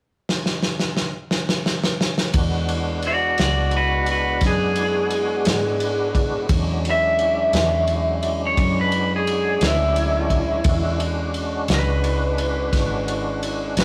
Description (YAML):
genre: slow blues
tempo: 58 BPM (dotted quarters)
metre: 12/8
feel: straight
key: E mixolydian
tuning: A4 = 439 Hz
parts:
  - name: warm soul drum kit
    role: drums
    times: 0.3-13.8 s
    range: kick drum, ride cymbal, snare drum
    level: -26 LUFS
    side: equal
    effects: none
  - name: vintage muted fingered electric bass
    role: bass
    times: 2.3-13.8 s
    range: G#1 to G#2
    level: -27 LUFS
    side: equal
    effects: none
  - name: tonewheel organ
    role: sustained chords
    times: 2.4-13.8 s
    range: F#3 to F#4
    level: -29 LUFS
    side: equal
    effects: slow rotary speaker, overdrive, chorus vibrato
  - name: lightly driven lead guitar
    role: melody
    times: 3.1-13.8 s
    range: E4 to E5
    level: -24 LUFS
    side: equal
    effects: none
room: moderate stone room reverb, RT60 1.1 s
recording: rough rehearsal-room recording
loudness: -21 LUFS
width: mono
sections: 0.0-2.3 A section; 2.3-13.8 B section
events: drum fill 0.3-2.3; lead electric guitar solo 2.3-13.8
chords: 0.0 N.C.; 2.3 E13